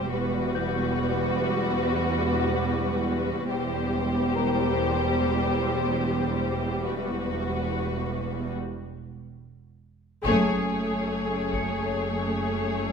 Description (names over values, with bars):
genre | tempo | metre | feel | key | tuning
cinematic, suspense film score | 71 BPM | 4/4 | straight | unclear | A4 = 440 Hz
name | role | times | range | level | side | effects
muted studio violin section | melody | 0.0-12.9 s | B4 to C#5 | -32 LUFS | left 5 dB | none
muted studio violin section | second line | 0.0-12.9 s | F#4 to G#4 | -31 LUFS | left 3 dB | none
muted studio viola section | accompaniment | 0.0-12.9 s | G3 to A3 | -30 LUFS | right 1 dB | none
muted studio double bass section | bass | 0.0-12.9 s | E1 to F#1 | -32 LUFS | right 4 dB | none
muted symphonic cello section | bass | 0.0-12.9 s | E2 to F#2 | -30 LUFS | right 1 dB | none
celesta | texture | 0.5-12.9 s | A#4 to C#7 | -36 LUFS | left 7 dB | none
taiko ensemble | drums | 10.3-11.9 s | none | -37 LUFS | left 2 dB | none
room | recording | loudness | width
moderate scoring stage reverb, RT60 1.7 s | none | -24 LUFS | side -6 dB against mid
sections
0.0-10.3 A section; 10.3-12.9 B section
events
break 8.6-10.3; band accent 10.3-11.1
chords
0.1 Emadd9; 8.6 N.C.; 10.3 F#madd9